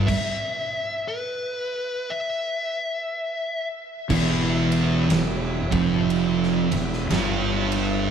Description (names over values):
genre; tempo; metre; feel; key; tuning
stoner and doom metal; 60 BPM; 4/4; swing 62% on 8ths; E phrygian; A4 = 440 Hz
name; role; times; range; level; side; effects
tonewheel organ; sustained chords; 0.0-8.1 s; G3 to E4; -37 LUFS; left 2 dB; slow rotary speaker, overdrive
thick fuzz guitar; riff; 0.0-8.1 s; E2 to G3; -26 LUFS; left 6 dB; distortion, slapback echo
thick fuzz guitar; riff; 0.0-8.1 s; E2 to G3; -23 LUFS; right 9 dB; distortion
fuzz fingered electric bass; bass; 0.0-8.1 s; E1 to G1; -26 LUFS; equal; overdrive
fuzz lead guitar; melody; 0.1-3.7 s; B4 to E5; -28 LUFS; left 2 dB; distortion, digital delay
big rock drum kit; drums; 0.1-7.9 s; crash cymbal, kick drum, ride cymbal, snare drum; -30 LUFS; equal; none
room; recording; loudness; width
light reverb; live gig heard through the venue's PA, club reverb; -22 LUFS; side -8 dB against mid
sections
0.0-4.1 A section; 4.1-8.1 B section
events
stop 0.1-4.1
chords
0.0 E5; 4.1 Em